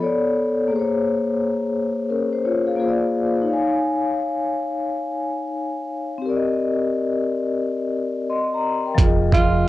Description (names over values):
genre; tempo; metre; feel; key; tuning
lo-fi hip hop; 87 BPM; 4/4; swing 65% on 16ths; Bb dorian; A4 = 440 Hz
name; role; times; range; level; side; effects
vibraphone with soft mallets; accompaniment; 0.0-9.7 s; F3 to C6; -20 LUFS; left 2 dB; low-pass filter, cassette tape, plate reverb
deep dub fingered electric bass; bass; 9.0-9.6 s; F1; -22 LUFS; right 2 dB; none
boom bap sampler-style drum kit; drums; 9.0-9.5 s; hi-hat, kick drum; -16 LUFS; right 2 dB; overdrive, cassette tape
breathy tenor saxophone; melody; 9.3-9.7 s; F4; -19 LUFS; right 2 dB; low-pass filter, cassette tape, plate reverb
room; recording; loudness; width
moderate studio reverb, RT60 0.6 s; home recording on cassette; -19 LUFS; side -16 dB against mid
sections
0.0-9.0 A section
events
none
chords
0.0 Bm9; 0.7 Bbm9; 2.8 Bb7; 3.5 Eb9sus4; 6.2 Cm7; 9.0 Fm7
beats
0.01 | 0.70 1.39 2.08 2.77 | 3.46 4.15 4.84 5.53 | 6.22 6.91 7.60 8.29 | 8.98 9.67